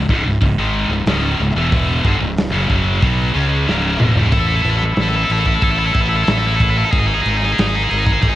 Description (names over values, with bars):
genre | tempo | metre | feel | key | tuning
heavy metal | 92 BPM | 4/4 | straight | C# minor | A4 = 440 Hz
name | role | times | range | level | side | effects
scooped high-gain guitar | riff | 0.0-8.4 s | C#2 to A4 | -17 LUFS | equal | distortion
fuzz fingered electric bass | bass | 0.0-8.4 s | C#1 to C#2 | -19 LUFS | equal | overdrive
modern studio drum kit | drums | 0.1-8.4 s | crash cymbal, hi-hat, kick drum, snare drum, toms | -19 LUFS | equal | cassette tape
room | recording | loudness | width
little or no reverb | home recording on cassette | -14 LUFS | side -14 dB against mid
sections
0.0-4.3 A section; 4.3-8.4 B section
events
drum fill 3.7-4.3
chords
0.0 C#m; 4.3 A5; 6.9 G#5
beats
0.41 1.07 | 1.72 2.37 3.02 3.67 | 4.33 4.98 5.63 6.28 | 6.93 7.58 8.23